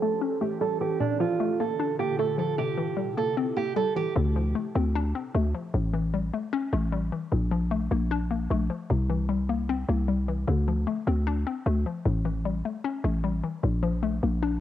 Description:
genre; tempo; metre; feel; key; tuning
hip hop; 152 BPM; 4/4; half-time; D minor; A4 = 438 Hz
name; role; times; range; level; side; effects
nylon-string guitar; melody; 0.0-4.1 s; D4 to A4; -27 LUFS; right 7 dB; low-pass filter, cassette tape, analog delay
hollow square pluck; accompaniment; 0.0-14.6 s; A2 to D4; -30 LUFS; left 6 dB; chorus, low-pass filter, cassette tape
ethereal airy pad; sustained chords; 0.0-4.1 s; Bb2 to A4; -34 LUFS; right 1 dB; ensemble chorus, built-in reverb, low-pass filter, cassette tape
growling 808-style bass; bass; 4.2-14.6 s; A1 to D2; -26 LUFS; equal; none
room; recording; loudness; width
light reverb; home recording on cassette; -25 LUFS; side -12 dB against mid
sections
0.0-4.2 A section; 4.2-14.6 B section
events
filter sweep 0.0-4.2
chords
0.0 A7; 1.0 Bbmaj7; 2.6 C7; 4.2 Dm7; 5.7 A7; 7.3 Bbmaj7; 8.9 C7; 10.5 Dm7; 12.1 A7; 13.6 Bbmaj7

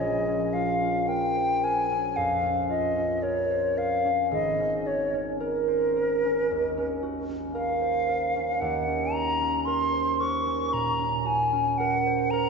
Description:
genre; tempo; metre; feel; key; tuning
classical, impressionist duo for flute and harp; 56 BPM; 4/4; rubato; unclear; A4 = 444 Hz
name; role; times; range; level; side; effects
bright silver concert flute; melody; 0.0-12.5 s; Bb4 to Db6; -25 LUFS; left 1 dB; none
concert harp; accompaniment; 0.0-12.5 s; Ab1 to C5; -28 LUFS; right 3 dB; none
room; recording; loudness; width
wet concert hall reverb, RT60 1.8 s; recorded in a church or concert hall, nothing above 7.6 kHz; -24 LUFS; side -5 dB against mid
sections
0.0-12.5 A section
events
none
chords
0.0 Dbmaj7/Bb; 4.3 Ab9sus4; 8.6 Ebm7

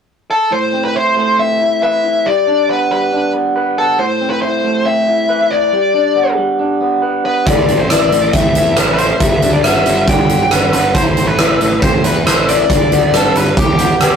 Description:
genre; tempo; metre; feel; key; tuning
quiet-loud alternative rock; 138 BPM; 4/4; straight; A minor; A4 = 440 Hz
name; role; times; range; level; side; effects
nasal lead guitar with a parked wah; melody; 0.3-14.2 s; G4 to G5; -14 LUFS; left 2 dB; overdrive
electric guitar through a small old amp; arpeggios; 0.5-14.2 s; E2 to B4; -17 LUFS; right 2 dB; none
fuzz picked electric bass; bass; 7.5-14.2 s; E1 to E2; -17 LUFS; equal; overdrive
huge arena drum kit; drums; 7.5-14.1 s; hi-hat, kick drum, rim click; -14 LUFS; right 1 dB; none
room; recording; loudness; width
moderate studio reverb, RT60 0.6 s; rough rehearsal-room recording, tube saturation; -11 LUFS; side -7 dB against mid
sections
0.5-14.2 A section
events
none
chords
0.0 N.C.; 0.5 Amadd9; 2.3 G; 4.0 Amadd9; 5.7 G; 7.5 Amadd9; 9.2 G; 11.0 Amadd9; 12.7 G; 13.6 Em

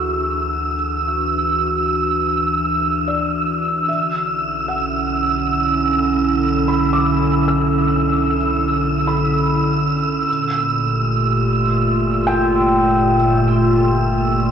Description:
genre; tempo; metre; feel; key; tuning
ambient; 75 BPM; 4/4; straight; unclear; A4 = 440 Hz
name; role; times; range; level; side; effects
warbly tape-like pad; sustained chords; 0.0-14.5 s; Bb2 to E5; -18 LUFS; equal; chorus, built-in reverb, cassette tape
felt-muted upright piano; arpeggios; 0.0-14.5 s; E4 to E6; -25 LUFS; left 1 dB; cassette tape, tape echo
warm sub bass; bass; 0.0-14.5 s; G1 to D2; -27 LUFS; left 1 dB; none
wind-like tuned noise texture; texture; 0.0-14.5 s; E6; -20 LUFS; right 2 dB; built-in reverb, cassette tape
room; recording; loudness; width
wet small room reverb, RT60 0.5 s; home recording on cassette; -15 LUFS; side -8 dB against mid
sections
0.0-14.5 A section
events
fade-in on ambient pad 0.0-14.5; fade-in on felt piano 0.0-14.5; fade-in on sub bass 0.0-14.5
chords
0.0 Dadd9; 3.9 Bm11; 10.3 Gm9

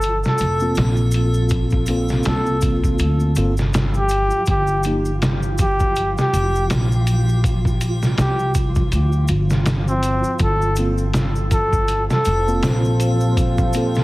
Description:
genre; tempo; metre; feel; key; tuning
trip hop; 81 BPM; 4/4; swing 57% on 16ths; G minor; A4 = 440 Hz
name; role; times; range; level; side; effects
trumpet with bucket mute; melody; 0.0-12.6 s; C4 to A4; -23 LUFS; equal; tape echo
upright bass; bass; 0.0-14.0 s; F1 to D2; -20 LUFS; equal; none
trip hop sampler-style drum kit; drums; 0.0-14.0 s; hi-hat, kick drum, snare drum; -21 LUFS; equal; vintage 12-bit sampler grit
maracas and triangle; percussion; 0.0-14.0 s; none; -36 LUFS; equal; none
flickering grainy texture; texture; 0.0-14.0 s; F3 to F4; -31 LUFS; right 1 dB; built-in reverb
mellow tine electric piano; accompaniment; 0.6-5.1, 10.8-14.0 s; Bb3 to A4; -24 LUFS; equal; medium stereo tremolo, tape echo
deep dark ambient pad; sustained chords; 11.7-14.0 s; C5 to A5; -29 LUFS; equal; chorus, built-in reverb
room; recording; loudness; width
light reverb, digital ambience; heavily compressed radio sound, vinyl crackle; -16 LUFS; side -19 dB against mid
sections
0.0-14.0 A section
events
none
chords
0.0 Gm11; 4.5 Fsus4; 10.4 Gm11

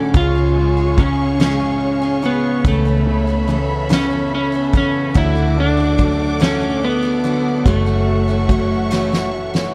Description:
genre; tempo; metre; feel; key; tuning
six-eight pop ballad; 48 BPM (dotted quarters); 6/8; straight; F# minor; A4 = 440 Hz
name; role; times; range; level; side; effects
electric slide guitar; melody; 0.0-9.3 s; A3 to E#4; -21 LUFS; equal; analog delay
warm grand piano; accompaniment; 0.0-9.7 s; A2 to A3; -26 LUFS; equal; none
dark studio string section; sustained chords; 0.0-9.7 s; G#4 to D6; -28 LUFS; equal; none
picked steel-string acoustic guitar; arpeggios; 0.0-9.7 s; F#2 to A4; -29 LUFS; equal; none
vintage muted fingered electric bass; bass; 0.0-9.7 s; F#1 to D2; -23 LUFS; equal; none
soft-mallet drum kit; drums; 0.1-9.7 s; kick drum, ride cymbal, snare drum; -24 LUFS; equal; none
room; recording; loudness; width
light reverb; dark, warm production; -17 LUFS; mono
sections
0.0-9.7 A section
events
drum fill 8.9-9.7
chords
0.1 C#; 2.6 Aadd9/C#; 5.2 D; 7.7 F#m7

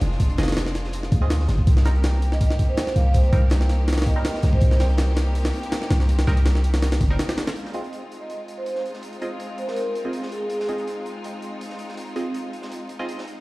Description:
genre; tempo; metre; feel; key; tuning
drum and bass, jungle; 163 BPM; 4/4; straight; F dorian; A4 = 441 Hz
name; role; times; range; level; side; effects
clear studio string section; sustained chords; 0.0-13.4 s; Ab3 to G4; -33 LUFS; left 1 dB; vintage 12-bit sampler grit
warm 808-style bass; bass; 0.0-7.2 s; F1 to D2; -19 LUFS; equal; none
crunchy breakbeat drum kit; drums; 0.0-13.4 s; hi-hat, snare drum; -41 LUFS; right 1 dB; high-pass filter on hats, studio reverb, high-pass filter on snare, high-pass filter on room
jungle sampler-style drum kit; drums; 0.0-7.6 s; hi-hat, kick drum, snare drum; -23 LUFS; equal; studio reverb
band-passed chord stab; stabs; 0.4-13.0 s; G3 to Eb5; -34 LUFS; right 2 dB; phaser, dub echo
vibraphone with soft mallets; melody; 2.3-4.8, 8.2-10.7 s; Ab4 to F5; -29 LUFS; right 1 dB; vintage 12-bit sampler grit, dub echo
room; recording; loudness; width
light reverb, studio ambience; played on a big sound system in a bare room, stone room reverb, vinyl crackle; -20 LUFS; side -21 dB against mid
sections
0.0-7.6 A section; 7.6-13.4 B section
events
drop 0.0-7.6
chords
0.0 Fm; 1.7 Cm7; 7.6 Fm7

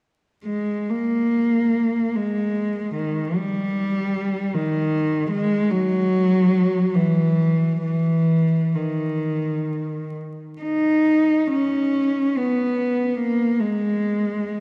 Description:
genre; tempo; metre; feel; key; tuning
classical, free, expressive piece for unaccompanied cello; 59-80 BPM; 3/4; rubato; G# minor; A4 = 440 Hz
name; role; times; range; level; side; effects
warm cello; solo; 0.4-14.6 s; D#3 to D#4; -22 LUFS; equal; none
room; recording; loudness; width
wet church reverb, RT60 3.2 s; worn, warbling old tape, cassette tape, vinyl crackle, warbly pitch drift; -21 LUFS; mono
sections
0.5-14.6 A section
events
none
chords
none

